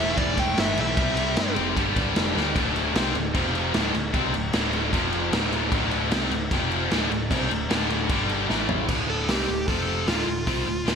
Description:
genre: hard rock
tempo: 152 BPM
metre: 4/4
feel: straight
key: D minor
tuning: A4 = 437 Hz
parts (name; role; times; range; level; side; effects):
- dark smooth lead guitar; melody; 0.0-1.5, 9.1-11.0 s; F4 to G5; -28 LUFS; right 1 dB; overdrive
- tonewheel organ; sustained chords; 0.0-8.9 s; G3 to G5; -37 LUFS; equal; none
- cranked stack guitar; riff; 0.0-11.0 s; D2 to C4; -28 LUFS; left 11 dB; overdrive, lush chorus
- distorted electric guitar; riff; 0.0-11.0 s; D2 to C4; -30 LUFS; right 11 dB; overdrive
- distorted electric guitar; riff; 0.0-8.9 s; D2 to C4; -31 LUFS; equal; overdrive
- picked electric bass; bass; 0.0-11.0 s; D1 to G2; -31 LUFS; equal; none
- raw garage drum kit; drums; 0.2-11.0 s; crash cymbal, hi-hat, kick drum, ride cymbal, snare drum, toms; -26 LUFS; equal; none
room: moderate lush hall reverb, RT60 1.5 s, small room reverb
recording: bright 1980s-style digital production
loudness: -22 LUFS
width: side -6 dB against mid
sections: 0.0-2.6 A section; 2.6-8.9 B section; 8.9-11.0 C section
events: drum fill 2.4, 8.5-8.9; lead electric guitar solo 8.9-11.0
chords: 0.0 Am; 1.0 C; 1.8 G5; 2.6 D5; 3.4 F5; 3.7 D5; 4.9 F5; 5.3 D5; 6.5 F5; 6.9 D5; 8.1 G5; 8.5 A5; 8.9 D5; 9.7 F5; 10.1 Dm

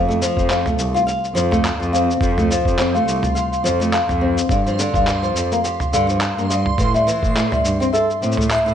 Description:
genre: folktronica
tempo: 105 BPM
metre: 4/4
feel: swing 56% on 16ths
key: F major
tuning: A4 = 440 Hz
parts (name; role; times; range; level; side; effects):
- marimba with soft mallets; second line; 0.0-8.7 s; E5 to F5; -22 LUFS; left 2 dB; ping-pong delay
- dark cello; bass; 0.0-8.7 s; C2 to A2; -22 LUFS; equal; tube saturation
- backwards swelling texture; texture; 0.9-8.7 s; C6; -30 LUFS; right 6 dB; built-in reverb
- flamenco guitar; arpeggios; 0.1-8.7 s; D3 to F5; -22 LUFS; equal; ping-pong delay
- lo-fi sampler-style drum kit; drums; 0.1-8.7 s; handclaps, shaker, toms; -24 LUFS; equal; studio reverb
- electronic kick drum; drums; 0.4-7.3 s; none; -21 LUFS; equal; studio reverb
room: light reverb, small room ambience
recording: nothing above 10.6 kHz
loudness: -16 LUFS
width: side -9 dB against mid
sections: 0.0-8.7 A section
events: none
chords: 0.0 F; 4.5 G7(no3); 6.8 Am7

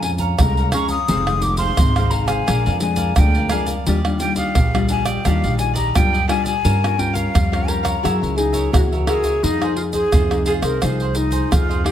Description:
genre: samba and choro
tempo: 86 BPM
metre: 4/4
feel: straight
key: F minor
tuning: A4 = 440 Hz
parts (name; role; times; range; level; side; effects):
- breathy mellow jazz flute; melody; 0.0-11.9 s; Eb4 to Eb6; -22 LUFS; left 2 dB; none
- cavaquinho; accompaniment; 0.0-11.9 s; D4 to Bb5; -28 LUFS; right 4 dB; none
- nylon-string guitar; accompaniment; 0.0-11.9 s; F2 to Bb4; -24 LUFS; left 6 dB; none
- upright bass; bass; 0.0-11.9 s; F1 to G2; -21 LUFS; right 1 dB; none
- pandeiro, egg shaker, surdo and tamborim; percussion; 0.0-11.9 s; none; -21 LUFS; right 1 dB; none
- breathy trombone; second line; 8.4-9.4 s; Gb4 to Ab4; -24 LUFS; left 2 dB; none
room: light reverb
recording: close, detailed microphones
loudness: -16 LUFS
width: side -10 dB against mid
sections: 0.0-9.4 A section; 9.4-11.9 B section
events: none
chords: 0.0 Bbm7; 1.1 Fm7; 2.5 Bb7; 3.9 Ebmaj9; 6.7 Gm7b5; 8.0 Gb9; 9.4 Fm7

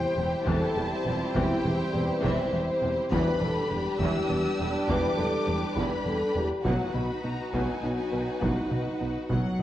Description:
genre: cinematic, hybrid orchestral and electronic film score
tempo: 68 BPM (dotted quarters)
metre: 6/8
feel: straight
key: unclear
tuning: A4 = 440 Hz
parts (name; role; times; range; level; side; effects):
- dark symphonic violin section; melody; 0.0-9.3 s; E5 to E6; -37 LUFS; left 3 dB; none
- warm symphonic violin section; second line; 0.0-9.6 s; F#4 to F#5; -35 LUFS; left 1 dB; none
- rich symphonic viola section; accompaniment; 0.0-9.6 s; C3 to E4; -35 LUFS; right 1 dB; none
- dark trombone section; sustained chords; 0.0-9.6 s; F#3 to D#4; -35 LUFS; right 2 dB; none
- warm French horn section; sustained chords; 0.0-9.6 s; D#4 to C5; -32 LUFS; left 2 dB; none
- soft round pluck; arpeggios; 0.0-9.6 s; C3 to B4; -39 LUFS; left 2 dB; none
- fat analog bass; riff; 0.0-9.6 s; E2 to B2; -34 LUFS; right 1 dB; none
- dark symphonic cello section; bass; 0.2-9.6 s; E2 to F#3; -35 LUFS; right 1 dB; none
- rich symphonic double bass section; bass; 0.2-9.6 s; E1 to B1; -35 LUFS; right 2 dB; none
- solo taiko drums; drums; 0.5-9.6 s; none; -34 LUFS; equal; none
room: wet recital hall reverb, RT60 1.4 s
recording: worn, warbling old tape, cassette tape, warbly pitch drift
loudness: -25 LUFS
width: side -13 dB against mid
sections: 0.0-9.6 A section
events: none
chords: 0.0 C/E; 3.1 Em7; 6.6 B

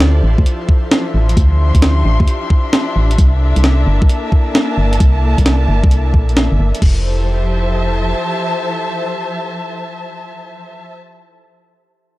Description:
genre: UK garage, two-step garage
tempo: 132 BPM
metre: 4/4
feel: swing 67% on 16ths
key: F major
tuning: A4 = 439 Hz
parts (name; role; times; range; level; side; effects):
- airy breathy pad; sustained chords; 0.0-10.7 s; E4 to D5; -26 LUFS; left 1 dB; chorus, sidechain pumping
- organ-like FM bass; bass; 0.0-8.1 s; F1 to D2; -13 LUFS; equal; none
- breakbeat sampler-style drum kit; drums; 0.0-6.9 s; crash cymbal, hi-hat, snare drum; -16 LUFS; equal; none
- warm studio string section; texture; 0.0-11.0 s; F3 to C6; -22 LUFS; left 1 dB; sidechain pumping
- electronic kick drum; drums; 0.4-6.9 s; none; -12 LUFS; equal; overdrive
room: little or no reverb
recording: dry, gritty hardware recording, cassette tape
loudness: -12 LUFS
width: side -18 dB against mid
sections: 0.0-6.8 A section; 6.8-10.5 B section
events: none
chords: 0.0 Dm9; 3.2 C13; 6.8 Fmaj7

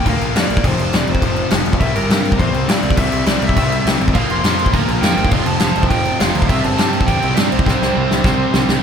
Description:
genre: punk rock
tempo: 206 BPM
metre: 4/4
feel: straight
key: unclear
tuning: A4 = 440 Hz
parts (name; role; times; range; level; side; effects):
- smooth overdriven lead guitar; melody; 0.0-8.5 s; Bb4 to C6; -22 LUFS; equal; slapback echo
- crunchy overdriven guitar; riff; 0.0-8.8 s; F2 to C4; -23 LUFS; equal; slapback echo
- distorted electric guitar; riff; 0.0-8.8 s; F2 to C4; -24 LUFS; left 11 dB; overdrive
- growling picked electric bass; bass; 0.1-8.8 s; F1 to G2; -22 LUFS; equal; overdrive
- big rock drum kit; drums; 0.1-8.7 s; crash cymbal, kick drum, snare drum; -17 LUFS; equal; none
- overdriven semi-hollow guitar; riff; 4.1-8.8 s; F2 to C4; -22 LUFS; right 11 dB; slapback echo
room: light reverb, studio reverb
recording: none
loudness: -13 LUFS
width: side -7 dB against mid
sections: 0.0-8.8 A section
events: drum fill 7.7-8.8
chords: 0.0 Bb; 0.6 F5; 1.8 C; 4.2 Bb5; 5.3 F; 6.5 C5

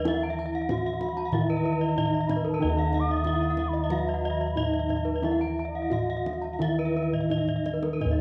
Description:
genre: Balinese gamelan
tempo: 84-94 BPM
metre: 4/4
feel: straight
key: Eb pelog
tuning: A4 = 440 Hz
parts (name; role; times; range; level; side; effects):
- gamelan-type bronze metallophone; melody; 0.0-8.2 s; Eb4 to Gb4-50c; -33 LUFS; equal; none
- gamelan-type bronze metallophone; accompaniment; 0.0-8.2 s; Eb3 to Gb3-50c; -39 LUFS; equal; none
- gamelan-type bronze metallophone; arpeggios; 0.0-8.2 s; Cb5-40c to Bb5-45c; -36 LUFS; equal; none
- gamelan-type bossed gongs; bass; 0.0-8.2 s; Eb2 to Fb4; -32 LUFS; equal; none
- gamelan-type bronze metallophone; arpeggios; 0.1-8.2 s; Bb4-45c to Bb5-45c; -37 LUFS; equal; none
- kendang; percussion; 0.1-8.2 s; none; -38 LUFS; equal; none
- mellow bansuri; second line; 1.0-6.7 s; Eb5 to Eb6; -37 LUFS; equal; none
room: wet recital hall reverb, RT60 1.6 s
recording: worn, warbling old tape, cassette tape, warbly pitch drift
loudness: -27 LUFS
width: mono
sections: 0.0-8.0 A section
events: drum fill 7.1-8.0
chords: none

